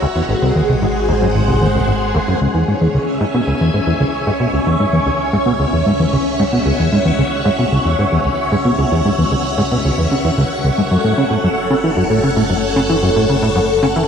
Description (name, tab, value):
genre	ambient, sequencer-driven space music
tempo	113 BPM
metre	4/4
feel	straight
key	C# minor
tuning	A4 = 441 Hz
part	string machine, full ensemble	sustained chords	0.0-14.1 s	G#3 to A#5	-17 LUFS	equal	phaser, ensemble chorus, shimmer reverb
part	plucky analog bass	riff	0.0-14.0 s	G#1 to E3	-15 LUFS	equal	lush chorus, ping-pong delay
part	analog drone	bass	0.6-14.1 s	F#1 to C#2	-27 LUFS	equal	chorus
part	bubbling stepped-filter texture	texture	0.0-2.4 s	F#5	-35 LUFS	right 3 dB	none
room	wet spring reverb, RT60 2.6 s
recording	echo-heavy mix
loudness	-13 LUFS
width	side -7 dB against mid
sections	0.0-2.4 A section; 2.4-14.1 B section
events	fade-in on synth drone 2.4-14.1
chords	0.3 G#7; 2.4 C#m; 10.9 F#m